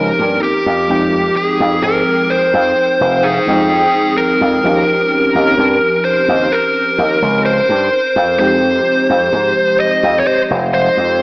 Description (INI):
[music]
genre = vaporwave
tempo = 64 BPM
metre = 4/4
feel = straight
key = F minor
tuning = A4 = 440 Hz
[part]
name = fuzz lead guitar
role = melody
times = 0.0-11.2 s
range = G4 to Eb5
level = -16 LUFS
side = equal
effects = distortion, tape echo
[part]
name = FM electric piano with soft pad layer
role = accompaniment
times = 0.0-11.2 s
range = F3 to G5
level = -21 LUFS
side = equal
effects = lush chorus, analog delay
[part]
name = slap bass with an envelope filter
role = bass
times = 0.0-11.2 s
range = F1 to Ab2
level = -20 LUFS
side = equal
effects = none
[sound]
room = wet lush hall reverb, RT60 2.9 s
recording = dreamy mix soaked in reverb, cassette tape, small speaker sound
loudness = -14 LUFS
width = mono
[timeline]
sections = 0.0-4.6 A section; 4.6-11.2 B section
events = none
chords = 0.4 Fm9; 4.6 Eb13; 7.9 Fm9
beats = | 0.89 1.83 2.77 3.71 | 4.64 5.58 6.52 7.46 | 8.39 9.33 10.27 11.21